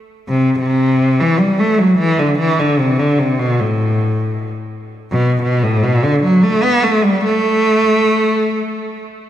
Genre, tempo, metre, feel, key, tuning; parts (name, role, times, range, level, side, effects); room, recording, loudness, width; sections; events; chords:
rock; 100 BPM; 4/4; straight; A dorian; A4 = 438 Hz
warm cello; melody; 0.3-9.0 s; A2 to B3; -13 LUFS; equal; tape echo
wet recital hall reverb, RT60 1.4 s; dark, warm production; -12 LUFS; side -11 dB against mid
0.0-9.3 A section